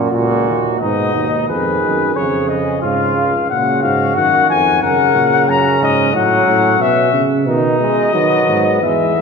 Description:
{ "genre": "classical, imitative canzona for brass ensemble", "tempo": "90 BPM", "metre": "4/4", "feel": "straight", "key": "unclear", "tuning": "A4 = 439 Hz", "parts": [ { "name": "warm flugelhorn", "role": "second line", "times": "0.0-9.2 s", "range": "B3 to A#4", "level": "-20 LUFS", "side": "right 4 dB", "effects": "none" }, { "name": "warm trombone", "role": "accompaniment", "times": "0.0-9.2 s", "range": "A#2 to A3", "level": "-19 LUFS", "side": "right 2 dB", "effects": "none" }, { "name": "warm tuba", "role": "bass", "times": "0.0-9.2 s", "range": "C#2 to D#3", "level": "-19 LUFS", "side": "right 2 dB", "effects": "none" }, { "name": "warm trumpet", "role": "melody", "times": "0.8-9.2 s", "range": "B4 to A#5", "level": "-15 LUFS", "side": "left 7 dB", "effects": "none" } ], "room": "wet church reverb, RT60 3.0 s", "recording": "minimal, uncompressed stereo recording", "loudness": "-12 LUFS", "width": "side -5 dB against mid", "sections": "0.8-9.2 A section", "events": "none", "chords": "0.0 F#; 0.8 G#m; 2.2 C#/E#; 3.5 F#; 6.1 F#m/A; 7.5 B" }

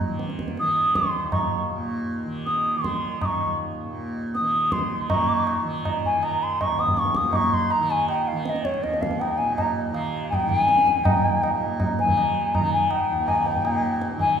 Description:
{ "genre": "indian classical, Hindustani", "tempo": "161 BPM", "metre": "4/4", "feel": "straight", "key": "Eb raga khamaj", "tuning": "A4 = 438 Hz", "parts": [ { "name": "tanpura", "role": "drone", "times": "0.0-14.4 s", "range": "Eb2 to Eb3", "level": "-30 LUFS", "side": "right 1 dB", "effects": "none" }, { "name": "tabla", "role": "percussion", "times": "0.0-14.3 s", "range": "none", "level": "-26 LUFS", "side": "right 2 dB", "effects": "none" }, { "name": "bansuri", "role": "melody", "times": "0.6-14.4 s", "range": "Db5 to Eb6", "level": "-22 LUFS", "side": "left 2 dB", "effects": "none" } ], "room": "wet concert hall reverb, RT60 2.3 s", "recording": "minimal, uncompressed stereo recording", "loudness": "-21 LUFS", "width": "side -7 dB against mid", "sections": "0.0-5.1 A section; 5.1-14.4 B section", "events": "speeding up 0.0-14.4", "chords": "none" }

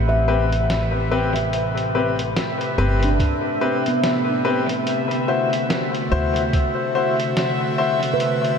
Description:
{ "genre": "ambient dub", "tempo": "72 BPM", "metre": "4/4", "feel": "swing 58% on 16ths", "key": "A dorian", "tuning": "A4 = 440 Hz", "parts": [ { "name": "airy breathy pad", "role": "sustained chords", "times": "0.0-8.6 s", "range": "A2 to E5", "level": "-27 LUFS", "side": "left 1 dB", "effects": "chorus" }, { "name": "handpan", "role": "arpeggios", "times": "0.0-8.6 s", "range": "B3 to F#5", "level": "-26 LUFS", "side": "right 1 dB", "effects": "vintage 12-bit sampler grit, analog delay" }, { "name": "upright bass", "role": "bass", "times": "0.0-6.5 s", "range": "G1 to D2", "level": "-22 LUFS", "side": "equal", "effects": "none" }, { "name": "bubbling stepped-filter texture", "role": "texture", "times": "0.0-8.6 s", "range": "E5", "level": "-28 LUFS", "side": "right 2 dB", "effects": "chorus, built-in reverb" }, { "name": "bright upright piano", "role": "stabs", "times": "0.3-8.0 s", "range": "C4 to C5", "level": "-22 LUFS", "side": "left 4 dB", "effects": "dub echo" }, { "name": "lo-fi sampler-style drum kit", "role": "drums", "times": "0.5-8.6 s", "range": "hi-hat, snare drum", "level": "-30 LUFS", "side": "equal", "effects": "studio ambience, dub echo" }, { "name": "electronic kick drum", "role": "drums", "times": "3.2-6.7 s", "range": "none", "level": "-20 LUFS", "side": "right 1 dB", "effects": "studio ambience" } ], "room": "wet huge ambient reverb, RT60 7.5 s", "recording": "dreamy mix soaked in reverb", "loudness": "-18 LUFS", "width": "side -6 dB against mid", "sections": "0.0-8.6 A section", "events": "fade-in on analog synth pad 0.0-8.6", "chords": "0.0 Am7; 4.9 D7" }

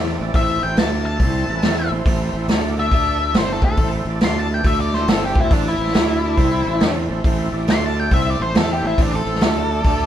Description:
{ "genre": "blues rock power trio and southern rock", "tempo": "139 BPM", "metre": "4/4", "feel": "swing 64% on 8ths", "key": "A minor", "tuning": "A4 = 439 Hz", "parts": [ { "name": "overdriven tonewheel organ", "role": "sustained chords", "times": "0.0-10.1 s", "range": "A3 to F5", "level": "-26 LUFS", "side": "right 3 dB", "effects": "slow rotary speaker, chorus vibrato" }, { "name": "fuzz fingered electric bass", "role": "bass", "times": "0.0-10.1 s", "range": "G1 to E2", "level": "-22 LUFS", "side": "equal", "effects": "overdrive" }, { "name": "vintage drum kit", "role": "drums", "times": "0.3-10.0 s", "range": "hi-hat, kick drum, snare drum", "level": "-19 LUFS", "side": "equal", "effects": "none" }, { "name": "octave-fuzz lead guitar", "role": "melody", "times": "0.4-10.1 s", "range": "D4 to C6", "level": "-22 LUFS", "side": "left 2 dB", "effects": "distortion" } ], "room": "moderate stone room reverb, RT60 1.2 s", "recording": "band playing live in one room", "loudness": "-16 LUFS", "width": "side -10 dB against mid", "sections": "0.0-10.1 A section", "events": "lead electric guitar solo 0.0-10.1", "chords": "0.0 Am; 0.8 D5; 1.2 Am; 2.5 D5; 3.4 Am; 4.2 D5; 5.1 Am; 6.0 D5; 6.4 Am; 7.7 D5; 8.1 Am; 9.4 D5" }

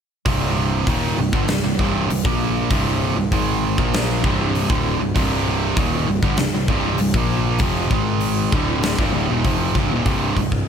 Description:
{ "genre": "hard rock", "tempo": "98 BPM", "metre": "4/4", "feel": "straight", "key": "C minor", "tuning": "A4 = 445 Hz", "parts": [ { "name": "sludgy distorted guitar", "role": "riff", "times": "0.3-10.6 s", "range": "C2 to Bb3", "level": "-24 LUFS", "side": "left 12 dB", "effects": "overdrive" }, { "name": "tight distorted guitar", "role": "riff", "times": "0.3-10.7 s", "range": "C2 to Bb3", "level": "-22 LUFS", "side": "right 11 dB", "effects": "distortion" }, { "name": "fuzz picked electric bass", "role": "bass", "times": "0.3-10.6 s", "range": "C1 to Bb1", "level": "-24 LUFS", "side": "equal", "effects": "overdrive" }, { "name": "big rock drum kit", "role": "drums", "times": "0.3-10.7 s", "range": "hi-hat, kick drum, snare drum", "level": "-22 LUFS", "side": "equal", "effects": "none" } ], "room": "studio ambience", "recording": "none", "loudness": "-17 LUFS", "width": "side -7 dB against mid", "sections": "0.3-10.1 A section", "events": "none", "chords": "0.3 Cm; 7.9 Ab5; 8.5 Cm; 10.1 C5" }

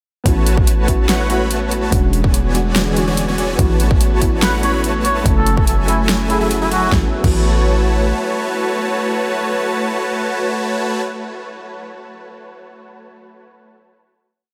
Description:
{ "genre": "future bass", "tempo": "144 BPM", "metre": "4/4", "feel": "half-time", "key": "A major", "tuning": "A4 = 439 Hz", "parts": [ { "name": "soft round pluck", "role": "accompaniment", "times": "0.2-11.1 s", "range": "G#3 to G#5", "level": "-26 LUFS", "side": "equal", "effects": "analog chorus, sidechain pumping, delay" }, { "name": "airy breathy pad", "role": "sustained chords", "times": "0.3-10.7 s", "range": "D3 to G#5", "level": "-29 LUFS", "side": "equal", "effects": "none" }, { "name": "supersaw chords", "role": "riff", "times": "0.3-11.0 s", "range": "E3 to B5", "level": "-23 LUFS", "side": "equal", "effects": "sidechain pumping, delay" }, { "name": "warm 808-style bass", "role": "bass", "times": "0.3-8.1 s", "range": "E1 to A1", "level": "-21 LUFS", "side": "equal", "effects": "sidechain pumping" }, { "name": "big-room dance drum kit", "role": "drums", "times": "0.3-7.4 s", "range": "crash cymbal, hi-hat, snare drum", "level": "-24 LUFS", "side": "equal", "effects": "none" }, { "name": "electronic kick drum", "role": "drums", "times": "0.3-7.4 s", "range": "none", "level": "-19 LUFS", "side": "equal", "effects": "none" }, { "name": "trumpet with cup mute", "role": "melody", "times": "4.4-6.9 s", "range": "E4 to C#5", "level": "-25 LUFS", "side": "equal", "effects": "sidechain pumping, analog delay" } ], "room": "moderate huge ambient reverb, RT60 8.6 s", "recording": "dreamy mix soaked in reverb", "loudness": "-16 LUFS", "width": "mono", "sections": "0.3-6.9 drop; 6.9-10.3 final chord", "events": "drop 0.3-6.9", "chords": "0.3 A69; 1.9 E13; 3.6 A69; 5.3 F#m7; 6.9 A69" }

